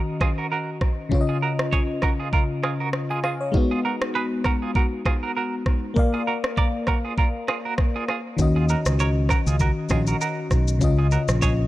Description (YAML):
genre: afrobeats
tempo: 99 BPM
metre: 4/4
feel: swing 55% on 16ths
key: Eb minor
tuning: A4 = 441 Hz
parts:
  - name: FM electric piano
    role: accompaniment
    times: 0.0-11.7 s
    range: Db3 to Ab5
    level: -25 LUFS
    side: left 2 dB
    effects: chorus
  - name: clean electric guitar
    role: riff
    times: 0.2-11.5 s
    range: F4 to D5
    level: -28 LUFS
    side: right 6 dB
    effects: tremolo, tape echo
  - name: afro-pop drum kit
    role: drums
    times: 0.2-11.6 s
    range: kick drum, rim click, shaker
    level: -23 LUFS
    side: equal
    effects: none
  - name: fingered electric bass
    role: bass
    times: 8.4-11.7 s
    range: Bb1 to Eb2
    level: -21 LUFS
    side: equal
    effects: none
room: little or no reverb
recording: none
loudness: -20 LUFS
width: side -16 dB against mid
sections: 0.0-11.7 A section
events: break 0.0-8.4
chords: 0.0 Ebm7; 1.1 Dbadd9; 3.5 Abm7; 6.0 Bb; 8.4 Ebm7; 10.8 Dbadd9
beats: 0.51 | 1.12 1.72 2.33 2.94 | 3.54 4.15 4.75 5.36 | 5.96 6.57 7.18 7.78 | 8.39 9.00 9.60 10.21 | 10.81 11.42